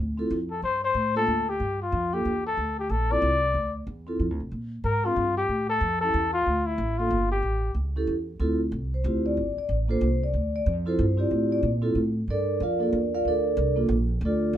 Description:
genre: jazz.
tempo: 185 BPM.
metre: 3/4.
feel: swing 63% on 8ths.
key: D minor.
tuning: A4 = 439 Hz.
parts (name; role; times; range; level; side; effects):
upright bass; bass; 0.0-14.6 s; G1 to Bb2; -28 LUFS; equal; none.
vibraphone with medium mallets; accompaniment; 0.2-14.6 s; Bb3 to F5; -26 LUFS; right 1 dB; none.
breathy trumpet; melody; 0.5-7.7 s; E4 to D5; -25 LUFS; left 3 dB; none.
room: moderate small room reverb, RT60 0.5 s.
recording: band playing live in one room.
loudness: -23 LUFS.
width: side -11 dB against mid.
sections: 0.0-8.4 A section; 8.4-14.6 B section.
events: none.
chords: 0.0 Dm9; 0.6 Gm9; 2.6 Dm9; 4.5 Bb7(no3); 5.5 A5; 6.5 Dmadd9; 7.1 Fsus2/G; 7.4 A7; 8.4 Dm9; 9.4 Gsus2; 10.3 Dm9; 12.3 Gm9.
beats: 0.30 | 0.63 0.95 1.27 | 1.60 1.92 2.25 | 2.57 2.90 3.22 | 3.54 3.87 4.19 | 4.52 4.84 5.17 | 5.49 5.81 6.14 | 6.46 6.78 7.11 | 7.43 7.75 8.08 | 8.40 8.72 9.05 | 9.37 9.69 10.02 | 10.34 10.66 10.98 | 11.31 11.63 11.95 | 12.27 12.60 12.92 | 13.24 13.56 13.89 | 14.21 14.53.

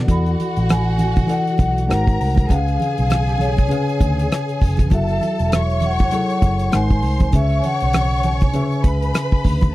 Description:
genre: lush 1970s-style soul.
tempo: 99 BPM.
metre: 4/4.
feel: swing 58% on 16ths.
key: unclear.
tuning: A4 = 445 Hz.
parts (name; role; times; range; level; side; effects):
warm studio string section; second line; 0.0-9.7 s; F#4 to C#6; -27 LUFS; right 1 dB; none.
tine electric piano; accompaniment; 0.0-9.7 s; C#3 to F#5; -23 LUFS; left 2 dB; none.
vintage muted fingered electric bass; bass; 0.0-9.7 s; E1 to E2; -20 LUFS; equal; none.
vibraphone with soft mallets; melody; 0.1-9.4 s; C#5 to B5; -24 LUFS; left 1 dB; none.
damped 70s drum kit; drums; 0.1-9.7 s; hi-hat, kick drum, rim click; -17 LUFS; equal; none.
congas; percussion; 0.1-9.7 s; none; -26 LUFS; right 3 dB; none.
room: little or no reverb.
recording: dry, close 1970s-style studio recording.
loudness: -16 LUFS.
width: side -17 dB against mid.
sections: 0.1-9.7 A section.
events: none.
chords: 0.1 E9sus4; 1.9 G#9; 2.5 C#7; 4.9 F#m7; 6.7 G#7; 7.3 C#m7.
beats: | 0.08 0.69 1.29 1.89 | 2.50 3.10 3.71 4.31 | 4.92 5.52 6.13 6.73 | 7.34 7.94 8.55 9.15.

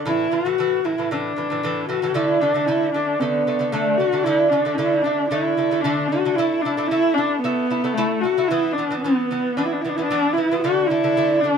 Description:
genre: mongolian traditional, Mongolian folk.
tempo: 113 BPM.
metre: 4/4.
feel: straight.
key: D gong mode.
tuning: A4 = 441 Hz.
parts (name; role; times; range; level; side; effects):
lute; arpeggios; 0.0-11.6 s; A2 to E4; -22 LUFS; right 1 dB; none.
warm horsehead fiddle; melody; 0.1-11.6 s; A3 to F#4; -20 LUFS; equal; none.
room: moderate small room reverb, RT60 0.5 s.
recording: band playing live in one room.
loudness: -18 LUFS.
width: side -7 dB against mid.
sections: 0.0-2.1 A section; 2.1-11.6 B section.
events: none.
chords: 0.0 A5; 2.1 D5; 6.4 A5; 8.5 E5; 10.6 D5.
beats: | 0.04 0.57 1.09 1.62 | 2.15 2.68 3.21 3.73 | 4.26 4.79 5.32 5.85 | 6.38 6.91 7.44 7.97 | 8.50 9.04 9.57 10.10 | 10.63 11.17.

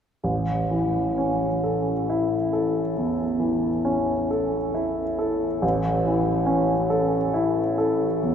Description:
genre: classical, romantic nocturne for solo piano.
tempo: 42-48 BPM (dotted quarters).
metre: 12/8.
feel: rubato.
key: A major.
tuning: A4 = 438 Hz.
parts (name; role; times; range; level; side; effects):
warm grand piano; solo; 0.2-8.3 s; A1 to A4; -21 LUFS; equal; none.
room: wet cathedral reverb, RT60 6.1 s.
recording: heard from further back in the room.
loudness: -21 LUFS.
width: side -8 dB against mid.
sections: 0.2-8.3 A section.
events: none.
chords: 0.2 A.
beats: | 0.25 1.65 2.97 4.31 | 5.63 6.90 8.22.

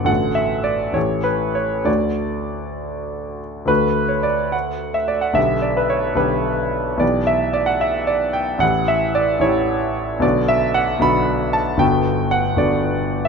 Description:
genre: classical, romantic character piece for solo piano.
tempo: 64-77 BPM (dotted quarters).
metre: 6/8.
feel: rubato.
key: D major.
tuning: A4 = 439 Hz.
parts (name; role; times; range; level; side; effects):
clear concert grand piano; solo; 0.0-13.3 s; G1 to B5; -17 LUFS; equal; none.
room: moderate recital hall reverb, RT60 1.5 s.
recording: close, detailed microphones.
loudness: -16 LUFS.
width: side -5 dB against mid.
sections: 0.0-3.7 A section; 3.7-13.3 A section.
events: none.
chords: 0.1 D/A; 1.0 A5; 1.9 D; 5.4 G/B; 7.0 Em/B; 8.6 A7; 10.2 Bm; 11.8 Gmaj7.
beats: | 0.09 0.96 | 1.87 2.79 | 3.69 4.53 | 5.37 6.19 | 7.02 7.82 | 8.62 9.43 | 10.23 11.03 | 11.81 12.60.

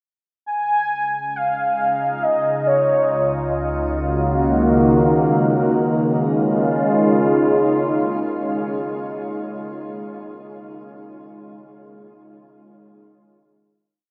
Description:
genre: ambient.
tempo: free time.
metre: none.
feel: none.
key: Db major.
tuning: A4 = 441 Hz.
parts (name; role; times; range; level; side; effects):
warm velvety synth lead; melody; 0.5-3.5 s; Db5 to Ab5; -23 LUFS; equal; chorus, shimmer reverb, delay.
evolving wavetable pad; sustained chords; 1.8-9.1 s; Db2 to Gb4; -21 LUFS; equal; phaser, built-in reverb, shimmer reverb.
room: wet huge ambient reverb, RT60 8.6 s.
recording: dreamy mix soaked in reverb.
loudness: -19 LUFS.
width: mono.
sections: 0.5-5.7 A section; 5.7-8.3 final chord.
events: fade-in on ambient pad 0.5-5.7.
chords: 0.5 Db; 3.1 Ebm7/Db; 5.7 Db.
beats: free time.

